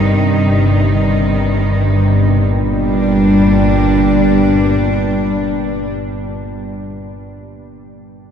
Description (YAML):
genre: dark ambient drone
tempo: free time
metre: none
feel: none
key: G minor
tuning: A4 = 440 Hz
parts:
  - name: clear symphonic cello section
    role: sustained chords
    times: 0.0-6.0 s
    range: G2 to Eb4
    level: -17 LUFS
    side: equal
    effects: none
  - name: organ-like drone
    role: drone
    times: 0.0-5.6 s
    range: G1 to G2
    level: -14 LUFS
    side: equal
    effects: ensemble chorus, built-in reverb
room: wet cathedral reverb, RT60 6.6 s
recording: dark, warm production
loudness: -11 LUFS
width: side -8 dB against mid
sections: 0.0-2.5 A section; 2.5-7.0 B section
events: none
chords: 0.0 Cm/G; 2.5 Gm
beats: free time